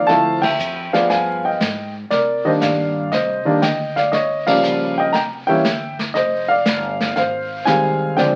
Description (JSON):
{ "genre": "jazz piano trio", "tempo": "119 BPM", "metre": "4/4", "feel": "swing 68% on 8ths", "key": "C minor", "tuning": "A4 = 440 Hz", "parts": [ { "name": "warm baby grand piano", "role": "melody", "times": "0.0-8.4 s", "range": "Db3 to Bb5", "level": "-19 LUFS", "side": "equal", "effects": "none" }, { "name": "upright bass", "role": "bass", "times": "0.0-8.4 s", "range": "F1 to C3", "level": "-36 LUFS", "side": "equal", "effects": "none" }, { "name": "vintage brush drum kit", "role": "drums", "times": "0.1-8.4 s", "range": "brushed snare drum, crash cymbal, hi-hat, kick drum, snare drum", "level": "-26 LUFS", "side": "equal", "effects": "none" } ], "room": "wet studio reverb, RT60 0.5 s", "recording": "very old 78 rpm record, vinyl crackle, nothing above 10.4 kHz", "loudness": "-18 LUFS", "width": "mono", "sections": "0.0-8.4 A section", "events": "band accent 0.3, 4.4", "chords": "0.1 Dm7; 1.1 G7b9; 2.1 Cm9; 4.1 Gm7b5; 5.1 C; 6.2 Fm9", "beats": "| 0.09 0.59 1.10 1.60 | 2.11 2.62 3.12 3.62 | 4.13 4.63 5.14 5.64 | 6.15 6.66 7.16 7.67 | 8.17" }